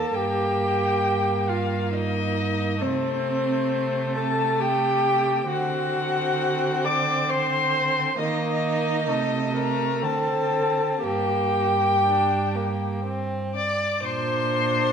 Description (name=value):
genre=classical, slow romantic movement for string quartet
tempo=58-68 BPM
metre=3/4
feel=rubato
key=G minor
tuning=A4 = 445 Hz
part: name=rich violin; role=melody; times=0.0-14.9 s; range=C5 to D6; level=-25 LUFS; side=left 4 dB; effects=none
part: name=rich violin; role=second line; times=0.0-14.9 s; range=A3 to D5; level=-28 LUFS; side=left 1 dB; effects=none
part: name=warm viola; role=accompaniment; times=0.0-14.9 s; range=C4 to D5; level=-27 LUFS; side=right 4 dB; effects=none
part: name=rich cello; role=bass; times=0.0-14.9 s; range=Eb2 to Eb3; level=-29 LUFS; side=right 4 dB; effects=none
room=wet scoring stage reverb, RT60 1.5 s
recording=none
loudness=-21 LUFS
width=side -7 dB against mid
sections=0.0-14.0 A section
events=none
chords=0.2 Eb/G; 2.8 Am7/C; 5.5 D7; 8.2 Eb5; 9.1 Adim/C; 10.0 D5; 11.0 Gm; 14.0 Bb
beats=| 0.16 1.05 1.94 | 2.83 3.72 4.61 | 5.50 6.39 7.30 | 8.19 9.09 10.03 | 11.03 12.05 13.06 | 14.04